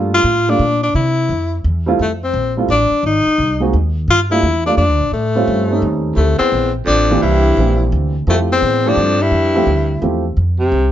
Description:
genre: jazz, small-group swing and bop.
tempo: 172 BPM.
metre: 3/4.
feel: swing 64% on 8ths.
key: F major.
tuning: A4 = 439 Hz.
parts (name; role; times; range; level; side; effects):
dark baby grand piano; accompaniment; 0.0-10.2 s; E3 to G4; -18 LUFS; right 3 dB; none.
upright bass; bass; 0.0-10.9 s; Ab1 to C3; -17 LUFS; equal; none.
warm tenor saxophone; melody; 0.1-10.0 s; A3 to F4; -16 LUFS; left 2 dB; plate reverb.
warm baritone saxophone; second line; 6.1-10.9 s; C2 to C3; -19 LUFS; right 1 dB; none.
room: light reverb.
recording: nothing above 7.7 kHz.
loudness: -13 LUFS.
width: side -11 dB against mid.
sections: 0.0-2.0 A section; 2.0-10.4 B section.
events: none.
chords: 0.0 Gm9; 0.9 C; 2.0 F; 3.0 Ab; 4.1 Gm9; 5.1 A7alt; 6.2 Dm9; 7.2 C9; 8.3 Fmaj9; 10.4 F5.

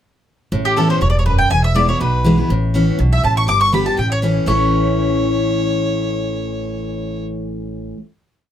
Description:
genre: bluegrass.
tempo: 243 BPM.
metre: 4/4.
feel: straight.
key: A mixolydian.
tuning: A4 = 440 Hz.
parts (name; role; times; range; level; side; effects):
picked steel-string acoustic guitar; accompaniment; 0.5-8.0 s; E2 to G4; -19 LUFS; left 1 dB; none.
upright bass; bass; 0.5-7.9 s; E1 to B1; -20 LUFS; right 1 dB; none.
mandolin; melody; 0.7-7.9 s; G4 to D6; -19 LUFS; equal; none.
warm fiddle; second line; 0.7-7.2 s; G4 to D6; -24 LUFS; left 2 dB; none.
room: light reverb.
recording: close, detailed microphones.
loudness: -14 LUFS.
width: side -10 dB against mid.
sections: 0.5-4.5 A section; 4.5-6.5 final chord.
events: none.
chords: 0.5 Aadd9; 1.5 E; 2.5 Aadd9; 3.5 G; 4.0 A.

